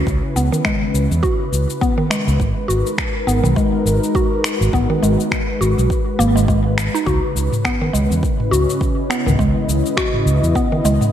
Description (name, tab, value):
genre	organic downtempo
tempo	103 BPM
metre	4/4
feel	swing 57% on 16ths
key	unclear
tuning	A4 = 440 Hz
part	warm analog pad	sustained chords	0.0-11.1 s	C#3 to D#5	-22 LUFS	left 1 dB	chorus, sidechain pumping
part	fretless electric bass	bass	0.0-11.0 s	G#1 to E2	-18 LUFS	equal	sidechain pumping
part	afro-pop drum kit	drums	0.1-11.1 s	cabasa, finger snaps, toms	-24 LUFS	left 1 dB	studio ambience, slapback echo
part	electronic kick drum	drums	0.1-10.7 s	none	-21 LUFS	equal	studio ambience
part	mallet-like synth pluck	arpeggios	0.4-11.1 s	D#3 to F#4	-20 LUFS	equal	chorus, tape echo, slapback echo
room	moderate lush hall reverb, RT60 2.3 s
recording	big arena sound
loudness	-15 LUFS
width	side -10 dB against mid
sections	0.0-11.1 A section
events	none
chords	0.0 C#m7; 2.4 G#m7; 7.1 C#m7